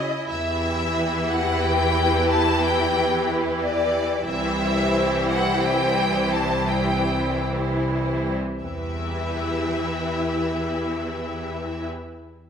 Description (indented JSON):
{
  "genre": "cinematic, emotional film score for orchestra",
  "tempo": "73-91 BPM",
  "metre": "3/4",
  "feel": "rubato",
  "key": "E minor",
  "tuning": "A4 = 441 Hz",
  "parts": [
    { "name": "clear studio violin section", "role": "melody", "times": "0.0-11.9 s", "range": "D5 to A5", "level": "-26 LUFS", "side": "left 4 dB", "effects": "none" },
    { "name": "rich studio violin section", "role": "second line", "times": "0.0-11.9 s", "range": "G4 to C5", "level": "-27 LUFS", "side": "left 1 dB", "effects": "none" },
    { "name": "clear studio viola section", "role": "accompaniment", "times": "0.0-11.9 s", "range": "E3 to E4", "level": "-26 LUFS", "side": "right 1 dB", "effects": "none" },
    { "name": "rich studio cello section", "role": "bass", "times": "0.0-11.9 s", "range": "C2 to E2", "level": "-27 LUFS", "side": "right 1 dB", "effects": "none" }
  ],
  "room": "wet recital hall reverb, RT60 1.4 s",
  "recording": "none",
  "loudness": "-20 LUFS",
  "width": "side -7 dB against mid",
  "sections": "0.3-8.6 A section; 8.6-12.5 B section",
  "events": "slowing down 3.3-8.6",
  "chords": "0.3 Em; 4.3 C; 8.6 Em",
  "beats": "| 0.27 0.95 1.62 | 2.30 2.96 3.63 | 4.29 4.96 5.63 | 6.32 7.05 7.82 | 8.63 9.42 10.22 | 11.02 11.82"
}